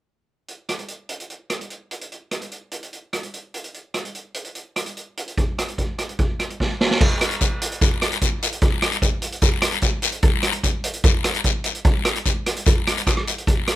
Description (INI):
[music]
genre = calypso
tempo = 148 BPM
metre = 4/4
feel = straight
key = none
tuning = none
[part]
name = street-band drum kit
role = drums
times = 0.5-13.8 s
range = crash cymbal, hi-hat, kick drum, rim click, snare drum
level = -20 LUFS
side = right 1 dB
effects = none
[part]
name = guiro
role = percussion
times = 7.0-13.8 s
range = none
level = -25 LUFS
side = left 8 dB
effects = none
[sound]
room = little or no reverb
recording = minimal, uncompressed stereo recording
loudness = -19 LUFS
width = side -14 dB against mid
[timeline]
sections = 0.5-7.0 A section; 7.0-13.8 B section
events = drum fill 6.6-7.0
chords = none